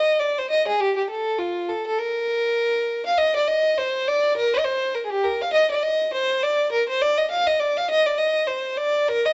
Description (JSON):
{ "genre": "celtic folk", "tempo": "203 BPM", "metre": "4/4", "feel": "swing 57% on 8ths", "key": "unclear", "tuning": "A4 = 442 Hz", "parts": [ { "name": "dark fiddle", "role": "solo", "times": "0.0-9.3 s", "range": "F4 to F5", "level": "-22 LUFS", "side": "equal", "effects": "none" } ], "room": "moderate studio reverb, RT60 0.8 s", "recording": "vinyl crackle, nothing above 7.8 kHz", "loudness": "-22 LUFS", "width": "mono", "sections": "0.0-3.2 A section; 3.2-9.3 B section", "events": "none", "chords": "none" }